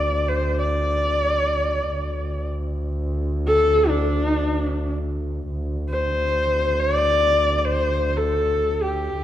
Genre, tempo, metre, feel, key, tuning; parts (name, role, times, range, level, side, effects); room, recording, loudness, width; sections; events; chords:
mongolian traditional, Mongolian folk; free time; A4 = 440 Hz
rich horsehead fiddle; melody; 0.0-9.2 s; D4 to D5; -20 LUFS; left 1 dB
warm double bass; drone; 0.0-9.2 s; D2; -24 LUFS; equal
moderate scoring stage reverb, RT60 1.6 s; dark, warm production; -20 LUFS; side -12 dB against mid
0.0-5.5 A section; 5.5-9.2 A section